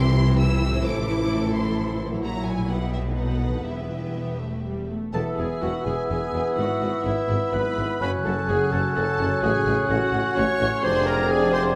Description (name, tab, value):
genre	classical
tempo	119-133 BPM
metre	3/4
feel	rubato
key	E minor, E major from 5.1 s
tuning	A4 = 440 Hz
part	warm symphonic violin section	melody	0.0-11.6 s	E5 to E6	-37 LUFS	equal	none
part	rich symphonic violin section	second line	0.0-11.8 s	B3 to C#5	-38 LUFS	equal	none
part	rich symphonic viola section	accompaniment	0.0-11.8 s	E3 to C#5	-32 LUFS	equal	none
part	concert harp	arpeggios	0.0-11.8 s	F#2 to C#5	-34 LUFS	equal	none
part	rich symphonic cello section	bass	0.0-11.8 s	E2 to C3	-32 LUFS	equal	none
part	rich symphonic double bass section	bass	0.0-11.8 s	E1 to C2	-31 LUFS	equal	none
part	warm clarinet	second line	5.1-11.6 s	E4 to C#5	-33 LUFS	equal	none
part	warm oboe	second line	5.1-11.8 s	C#5 to E5	-35 LUFS	equal	none
part	mellow bassoon	accompaniment	5.1-11.8 s	B3 to C#4	-31 LUFS	equal	none
part	dark French horn section	sustained chords	5.1-11.8 s	B3 to Ab4	-34 LUFS	equal	none
part	clear tuba	bass	5.1-11.8 s	E1 to A1	-34 LUFS	equal	none
part	silver concert flute	second line	5.2-11.8 s	E6 to Ab6	-32 LUFS	equal	none
room	moderate scoring stage reverb, RT60 2.0 s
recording	faint mains hum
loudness	-24 LUFS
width	mono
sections	0.0-5.1 A section; 5.1-11.8 B section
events	none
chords	0.0 C; 0.8 Am; 2.2 F#7/A#; 2.7 Em/B; 3.7 Em; 5.1 E; 6.6 E/G#; 8.0 F#m; 9.4 F#m/A; 10.8 Dm7b5/F